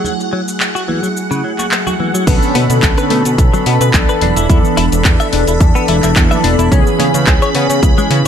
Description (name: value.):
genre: nu-disco, nu disco.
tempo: 108 BPM.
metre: 4/4.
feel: swing 53% on 16ths.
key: B dorian.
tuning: A4 = 442 Hz.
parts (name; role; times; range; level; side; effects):
mellow synth brass; accompaniment; 0.0-8.3 s; D3 to A4; -16 LUFS; equal; chorus, sidechain pumping, dub echo.
string machine, full ensemble; sustained chords; 0.0-8.3 s; F#5 to B5; -23 LUFS; right 1 dB; phaser, ensemble chorus, sidechain pumping.
direct-recorded clean electric guitar; riff; 0.0-8.3 s; C#3 to E5; -20 LUFS; left 3 dB; analog chorus, vintage 12-bit sampler grit.
congas; percussion; 0.0-7.2 s; none; -24 LUFS; right 6 dB; none.
house drum kit; drums; 0.1-8.3 s; crash cymbal, handclaps, hi-hat, shaker; -19 LUFS; left 1 dB; none.
fat analog bass; bass; 2.3-8.3 s; E1 to C#3; -15 LUFS; equal; none.
electronic kick drum; drums; 2.3-7.9 s; none; -12 LUFS; equal; none.
room: light reverb.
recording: low-pass filter.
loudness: -10 LUFS.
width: side -8 dB against mid.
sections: 0.0-2.3 A section; 2.3-8.3 B section.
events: drop 2.3-8.3.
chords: 0.0 F#m9; 2.3 Bm9; 4.2 E7sus4; 6.7 C#m7.